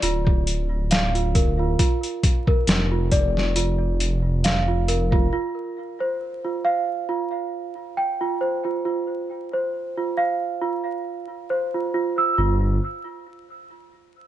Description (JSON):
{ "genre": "trip hop", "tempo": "68 BPM", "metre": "4/4", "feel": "swing 54% on 16ths", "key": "unclear", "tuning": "A4 = 439 Hz", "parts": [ { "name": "celesta", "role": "arpeggios", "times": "0.0-12.8 s", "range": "F4 to E6", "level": "-24 LUFS", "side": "right 3 dB", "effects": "vintage 12-bit sampler grit, low-pass filter, digital delay" }, { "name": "dark detuned saw bass", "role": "bass", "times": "0.0-5.3, 12.4-12.8 s", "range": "D1 to G1", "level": "-22 LUFS", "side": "equal", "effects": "none" }, { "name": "trip hop sampler-style drum kit", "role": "drums", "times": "0.0-5.3 s", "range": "hi-hat, kick drum, snare drum", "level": "-20 LUFS", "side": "equal", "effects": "none" } ], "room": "little or no reverb", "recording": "vinyl crackle, nothing above 10.7 kHz", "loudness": "-20 LUFS", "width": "side -12 dB against mid", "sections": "0.0-12.4 A section; 12.4-14.3 B section", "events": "none", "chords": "0.0 Gm7 (rootless); 5.3 Fsus2; 12.4 Fsus2/G" }